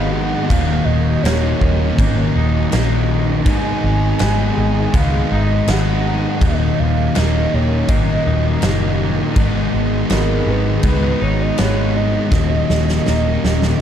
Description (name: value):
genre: rock, shoegaze and dream pop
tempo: 81 BPM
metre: 4/4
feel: straight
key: Eb minor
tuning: A4 = 441 Hz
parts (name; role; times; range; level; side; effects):
- warbly nostalgic lead; melody; 0.0-13.8 s; Bb4 to Ab5; -25 LUFS; right 4 dB; chorus, tape echo
- hollow soft pad; sustained chords; 0.0-13.8 s; Cb4 to Eb5; -30 LUFS; right 1 dB; chorus
- twangy electric guitar; arpeggios; 0.0-13.8 s; Eb2 to Eb4; -31 LUFS; left 1 dB; analog chorus, tape echo
- overdriven electric guitar; riff; 0.0-13.8 s; Eb2 to Eb4; -23 LUFS; right 12 dB; reverse reverb
- thick fuzz guitar; riff; 0.0-13.8 s; Eb2 to Ab3; -20 LUFS; left 9 dB; distortion, wide subtle chorus
- vintage muted picked electric bass; bass; 0.0-13.7 s; Eb1 to Db2; -19 LUFS; equal; none
- huge arena drum kit; drums; 0.5-13.8 s; crash cymbal, kick drum, snare drum; -21 LUFS; equal; none
room: small room ambience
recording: dark, warm production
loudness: -14 LUFS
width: side -9 dB against mid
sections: 0.0-13.8 A section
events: drum fill 12.3-13.8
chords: 0.5 Ebm7; 3.5 Abm7; 6.4 Ebm7; 9.4 Abm7; 12.3 Ebm7